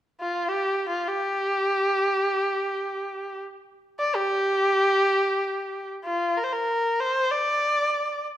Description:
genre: chinese traditional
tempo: free time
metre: none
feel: none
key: G yu mode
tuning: A4 = 439 Hz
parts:
  - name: warm erhu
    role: melody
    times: 0.2-8.2 s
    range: F4 to D5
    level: -22 LUFS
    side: equal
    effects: none
room: wet recital hall reverb, RT60 1.5 s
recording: none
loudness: -22 LUFS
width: side -12 dB against mid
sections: 0.0-6.0 A section; 6.0-8.4 B section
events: none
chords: none

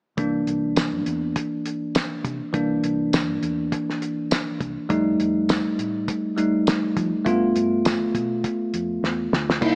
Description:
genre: straight-eighth soul blues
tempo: 102 BPM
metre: 4/4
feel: swing 56% on 16ths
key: C mixolydian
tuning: A4 = 440 Hz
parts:
  - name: bell-like tine electric piano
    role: accompaniment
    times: 0.2-9.8 s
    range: E3 to F4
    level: -25 LUFS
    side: equal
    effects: none
  - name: vintage muted fingered electric bass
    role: bass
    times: 0.2-9.8 s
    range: C2 to F3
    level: -34 LUFS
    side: equal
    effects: none
  - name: cloth-damped thuddy drum kit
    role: drums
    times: 0.2-9.8 s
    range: crash cymbal, hi-hat, kick drum, snare drum, tambourine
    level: -27 LUFS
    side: equal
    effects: none
room: light reverb, small room ambience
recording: small speaker sound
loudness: -24 LUFS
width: mono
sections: 0.2-9.6 A section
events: drum fill 9.0-9.6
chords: 0.2 C7; 4.9 F7; 7.3 G7

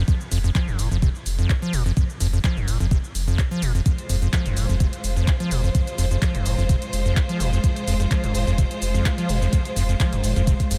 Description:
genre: acid house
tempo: 127 BPM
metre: 4/4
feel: swing 53% on 16ths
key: F minor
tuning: A4 = 440 Hz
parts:
  - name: acid bass, square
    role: riff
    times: 0.0-10.8 s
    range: Eb2 to F3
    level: -27 LUFS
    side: equal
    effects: tube saturation, sidechain pumping, analog delay
  - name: saturated sub bass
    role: bass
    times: 0.0-10.8 s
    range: F1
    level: -27 LUFS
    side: equal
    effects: sidechain pumping
  - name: electronic kick drum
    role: drums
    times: 0.1-10.7 s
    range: none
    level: -23 LUFS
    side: equal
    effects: none
  - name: punchy analog drum machine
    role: drums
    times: 0.1-10.8 s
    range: handclaps, hi-hat, shaker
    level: -34 LUFS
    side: equal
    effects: overdrive
  - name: clear symphonic string section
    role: sustained chords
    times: 3.9-10.8 s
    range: Ab3 to C5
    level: -31 LUFS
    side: equal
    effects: sidechain pumping
room: light reverb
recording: none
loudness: -22 LUFS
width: mono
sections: 0.0-10.8 A section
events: none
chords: 0.0 Fm

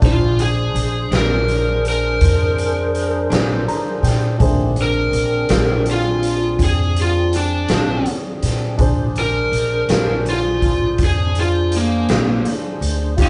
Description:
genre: slow blues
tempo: 55 BPM (dotted quarters)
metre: 12/8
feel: straight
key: Bb mixolydian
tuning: A4 = 439 Hz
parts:
  - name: dark upright piano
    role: accompaniment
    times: 0.0-13.3 s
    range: D4 to Bb5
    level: -31 LUFS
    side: equal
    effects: none
  - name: tonewheel organ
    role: sustained chords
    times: 0.0-13.3 s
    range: Eb3 to C5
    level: -29 LUFS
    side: equal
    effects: slow rotary speaker, overdrive, chorus vibrato
  - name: upright bass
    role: bass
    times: 0.0-13.3 s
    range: Bb1 to Bb2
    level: -22 LUFS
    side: equal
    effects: none
  - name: raw garage drum kit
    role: drums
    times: 0.0-13.3 s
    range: hi-hat, kick drum, snare drum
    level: -24 LUFS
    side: equal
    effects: none
  - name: lead guitar through a small cranked amp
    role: melody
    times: 0.1-13.3 s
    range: Bb3 to Bb4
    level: -22 LUFS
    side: equal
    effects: overdrive
  - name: electric guitar through a small old amp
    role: accompaniment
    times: 1.1-13.3 s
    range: Bb2 to F4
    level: -28 LUFS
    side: equal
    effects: harmonic tremolo
room: light reverb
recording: band playing live in one room, nothing above 10.4 kHz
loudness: -18 LUFS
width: mono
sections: 0.0-13.3 A section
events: lead electric guitar solo 0.0-13.3; upright piano fill 3.3-4.4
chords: 0.0 Bb9

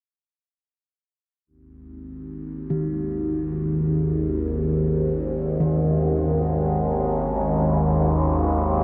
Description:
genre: dark ambient drone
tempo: free time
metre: none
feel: none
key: G# minor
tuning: A4 = 440 Hz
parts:
  - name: deep dark ambient pad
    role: sustained chords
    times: 3.9-8.8 s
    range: G#3 to B4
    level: -35 LUFS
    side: equal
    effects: chorus, built-in reverb
  - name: overtone-sweeping drone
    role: drone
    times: 1.9-8.8 s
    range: G#1 to D#2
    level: -26 LUFS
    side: equal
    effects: chorus, built-in reverb
  - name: bronze singing bowl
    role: arpeggios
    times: 2.7-8.8 s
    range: D#3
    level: -27 LUFS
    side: equal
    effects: tape echo
room: wet huge ambient reverb, RT60 8.2 s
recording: dark, warm production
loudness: -23 LUFS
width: mono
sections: 1.5-8.8 A section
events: fade-in on ambient pad 1.5-8.8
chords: 1.5 G#m7

